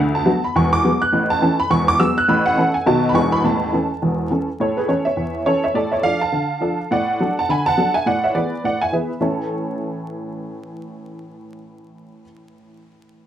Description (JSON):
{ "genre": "jazz, stride piano", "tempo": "208 BPM", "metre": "4/4", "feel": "swing 59% on 8ths", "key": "A major", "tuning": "A4 = 440 Hz", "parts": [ { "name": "honky-tonk upright piano", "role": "solo", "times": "0.0-13.3 s", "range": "E1 to F#6", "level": "-17 LUFS", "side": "equal", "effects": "none" } ], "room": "moderate studio reverb, RT60 0.5 s", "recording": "vinyl crackle", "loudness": "-16 LUFS", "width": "side -10 dB against mid", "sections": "0.0-4.6 A section; 4.6-9.2 B section; 9.2-11.5 C section", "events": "none", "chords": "0.0 Bm/D; 0.6 E9; 1.1 A; 1.7 Eadd9; 2.3 A; 2.9 B7; 3.2 E7; 3.4 A; 5.7 Dm/A; 6.9 D/A; 8.1 E7/A; 9.2 A", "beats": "0.27 0.56 0.84 | 1.13 1.42 1.71 2.00 | 2.29 2.58 2.86 3.15 | 3.44 3.73 4.02 4.30 | 4.59 4.88 5.17 5.46 | 5.75 6.04 6.33 6.62 | 6.90 7.19 7.48 7.77 | 8.06 8.35 8.64 8.93 | 9.21 9.50 9.79 10.08 | 10.37 10.66 10.95 11.24" }